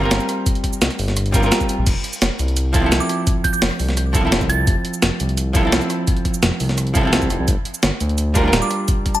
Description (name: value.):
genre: liquid drum and bass.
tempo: 171 BPM.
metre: 4/4.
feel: straight.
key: unclear.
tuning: A4 = 442 Hz.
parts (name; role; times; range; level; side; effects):
archtop guitar, miked and amplified; accompaniment; 0.0-9.2 s; F3 to Bb4; -22 LUFS; right 1 dB; dub echo.
smooth synth bass; bass; 0.0-8.6 s; D1 to D2; -20 LUFS; equal; none.
breakbeat sampler-style drum kit; drums; 0.1-9.2 s; crash cymbal, hi-hat, rim click, shaker, snare drum; -20 LUFS; equal; none.
electronic kick drum; drums; 0.5-9.1 s; none; -20 LUFS; equal; none.
glassy synth bell; melody; 3.0-4.8, 8.6-9.2 s; A5 to A6; -25 LUFS; right 2 dB; chorus, phaser, ping-pong delay.
room: light reverb, digital ambience.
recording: none.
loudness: -16 LUFS.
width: side -14 dB against mid.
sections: 0.0-9.2 A section.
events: none.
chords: 0.0 C7sus4; 1.9 Fmaj7; 7.5 Gm7.